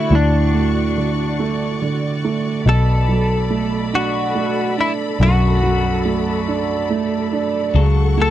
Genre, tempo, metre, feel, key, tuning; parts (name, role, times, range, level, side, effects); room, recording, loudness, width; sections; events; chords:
six-eight pop ballad; 47 BPM (dotted quarters); 6/8; straight; A4 = 440 Hz
direct-recorded clean electric guitar; melody; 0.0-8.3 s; D4 to A4; -22 LUFS; left 2 dB; analog chorus
warm upright piano; accompaniment; 0.0-8.3 s; F#2 to D4; -20 LUFS; right 5 dB
clear studio string section; sustained chords; 0.0-8.3 s; F#4 to C#6; -27 LUFS; left 4 dB
vintage muted fingered electric bass; bass; 0.0-8.3 s; B1 to D2; -17 LUFS; left 1 dB
clean electric guitar; arpeggios; 7.8-8.3 s; F#3 to A4; -25 LUFS; left 11 dB
little or no reverb; dry, close 1970s-style studio recording; -16 LUFS; side -12 dB against mid
0.0-8.3 A section
0.0 Dmaj7; 2.7 Bm7; 7.8 A6/C#